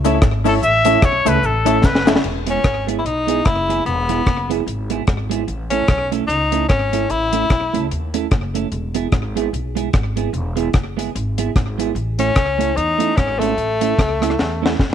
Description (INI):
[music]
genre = ska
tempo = 148 BPM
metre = 4/4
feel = swing 58% on 8ths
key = E major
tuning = A4 = 440 Hz
[part]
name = bright upright piano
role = stabs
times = 0.0-2.2 s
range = E4 to E5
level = -21 LUFS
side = left 10 dB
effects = slapback echo
[part]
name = upright bass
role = bass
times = 0.0-14.9 s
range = E1 to E2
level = -23 LUFS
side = equal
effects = none
[part]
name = deep reggae drum kit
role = drums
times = 0.0-14.9 s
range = crash cymbal, hi-hat, kick drum, rim click, snare drum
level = -18 LUFS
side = left 1 dB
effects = slapback echo
[part]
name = clean electric guitar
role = accompaniment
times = 0.1-14.7 s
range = G#3 to A4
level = -23 LUFS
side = right 12 dB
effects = wide subtle chorus
[part]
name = cabasa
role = percussion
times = 0.1-2.2 s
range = none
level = -38 LUFS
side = right 16 dB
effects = none
[part]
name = breathy trumpet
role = melody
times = 0.5-2.1 s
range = A4 to E5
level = -16 LUFS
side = left 2 dB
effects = none
[part]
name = bright tenor saxophone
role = melody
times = 2.5-7.9, 12.2-14.8 s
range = A3 to E4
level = -19 LUFS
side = left 3 dB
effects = none
[sound]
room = light reverb, small room ambience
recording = 1960s-style stereo with parts hard left and right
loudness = -16 LUFS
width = side -9 dB against mid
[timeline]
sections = 0.0-2.2 A section; 2.2-14.9 B section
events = trumpet solo 0.0-2.2; drum fill 1.8-2.2, 14.4-14.9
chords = 0.0 A; 2.2 E; 5.5 A; 8.7 E; 12.0 A